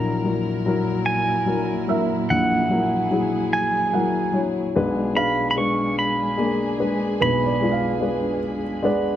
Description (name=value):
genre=acoustic folk-pop ballad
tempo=49 BPM (dotted quarters)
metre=6/8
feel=straight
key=F# major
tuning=A4 = 440 Hz
part: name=pedal steel guitar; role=melody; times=0.0-9.2 s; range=F#5 to C#6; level=-24 LUFS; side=right 2 dB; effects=none
part: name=dark baby grand piano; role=accompaniment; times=0.0-9.2 s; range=A#1 to F#5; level=-22 LUFS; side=left 3 dB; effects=none
part: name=muted chamber string section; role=sustained chords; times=0.0-9.2 s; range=A#2 to A#4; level=-28 LUFS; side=right 2 dB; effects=none
part: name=felt-muted upright piano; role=arpeggios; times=1.9-9.2 s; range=B4 to F#5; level=-28 LUFS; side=right 10 dB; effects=none
room=light reverb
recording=close, detailed microphones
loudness=-19 LUFS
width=side -11 dB against mid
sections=0.0-9.2 A section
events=none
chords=0.0 F#7/A#; 4.8 Bm6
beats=1.07 | 2.30 3.53 | 4.75 5.98 | 7.21 8.43